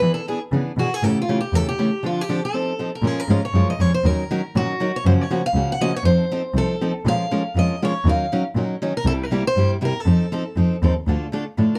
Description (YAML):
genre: acoustic string swing (jazz manouche)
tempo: 239 BPM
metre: 4/4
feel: swing 57% on 8ths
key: Bb minor from 3.0 s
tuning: A4 = 440 Hz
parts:
  - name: picked steel-string acoustic guitar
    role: melody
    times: 0.0-11.8 s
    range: F4 to Gb5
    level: -27 LUFS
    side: equal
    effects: none
  - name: picked steel-string acoustic guitar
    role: accompaniment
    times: 0.0-11.8 s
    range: C3 to Bb4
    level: -26 LUFS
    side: equal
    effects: none
  - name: muted cello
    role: bass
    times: 0.0-11.7 s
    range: C2 to E3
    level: -21 LUFS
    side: equal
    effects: none
room: light reverb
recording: dark, warm production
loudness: -21 LUFS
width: mono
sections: 0.0-3.0 A section; 3.0-11.1 B section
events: break 2.0-3.0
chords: 0.0 E7; 1.0 A7; 2.0 Dm7; 2.5 F7; 3.0 Bbm7; 4.0 Ebm7; 5.0 Gbmaj7; 6.0 F7; 7.1 Bbm7; 8.1 Ebm9; 9.1 C7; 10.1 F7; 11.1 Dm